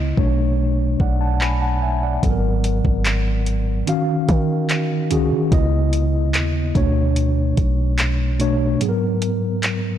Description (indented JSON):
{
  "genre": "contemporary R&B",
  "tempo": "73 BPM",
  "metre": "4/4",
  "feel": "straight",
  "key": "unclear",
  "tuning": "A4 = 440 Hz",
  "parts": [
    { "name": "mellow tine electric piano", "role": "accompaniment", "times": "0.0-10.0 s", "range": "G#2 to B5", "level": "-20 LUFS", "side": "equal", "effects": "medium stereo tremolo" },
    { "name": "warm 808-style bass", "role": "bass", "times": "0.0-8.8 s", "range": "G#1 to D#3", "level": "-20 LUFS", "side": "equal", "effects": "none" },
    { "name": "smooth R&B drum kit", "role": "drums", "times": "0.2-9.8 s", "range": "handclaps, hi-hat, kick drum", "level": "-22 LUFS", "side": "equal", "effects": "none" }
  ],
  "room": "little or no reverb",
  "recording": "blown-out, overdriven recording, overdrive",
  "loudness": "-17 LUFS",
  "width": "side -10 dB against mid",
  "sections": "0.0-10.0 A section",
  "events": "break 8.8-10.0; tine electric piano fill 9.6-10.0",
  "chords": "0.2 Bm9; 2.2 G#m9; 3.9 D#m9; 5.5 C#m9; 6.8 Bm9; 8.8 G#m9"
}